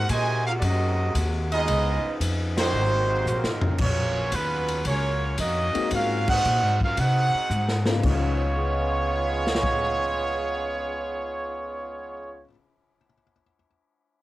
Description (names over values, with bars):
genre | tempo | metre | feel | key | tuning
jazz, big band swing | 113 BPM | 4/4 | swing 69% on 8ths | Db mixolydian from 3.8 s | A4 = 442 Hz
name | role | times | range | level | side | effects
bright trumpet section | melody | 0.0-12.5 s | Gb3 to Ab5 | -26 LUFS | right 1 dB | cassette tape
muted trombone section | second line | 0.0-12.4 s | C3 to Gb4 | -31 LUFS | right 6 dB | cassette tape
warm saxophone section | sustained chords | 0.0-3.8 s | C3 to Gb4 | -32 LUFS | equal | cassette tape
upright bass | bass | 0.0-12.4 s | Gb1 to C3 | -26 LUFS | equal | none
swinging big-band drum kit | drums | 0.1-9.8 s | crash cymbal, hi-hat, kick drum, ride cymbal, snare drum, toms | -30 LUFS | left 1 dB | cassette tape
warm concert grand piano | accompaniment | 5.7-13.7 s | Db3 to Cb7 | -32 LUFS | left 6 dB | cassette tape
room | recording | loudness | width
little or no reverb | home recording on cassette | -22 LUFS | side -16 dB against mid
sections
0.0-3.8 A section; 3.8-8.0 B section; 8.0-12.3 C section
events
band accent 2.5, 6.2; drum fill 3.3-3.8, 7.5-8.0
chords
0.0 Ab9; 1.7 Db9; 2.7 Ab9; 3.8 Ebm9; 5.9 Ab7; 8.0 Db9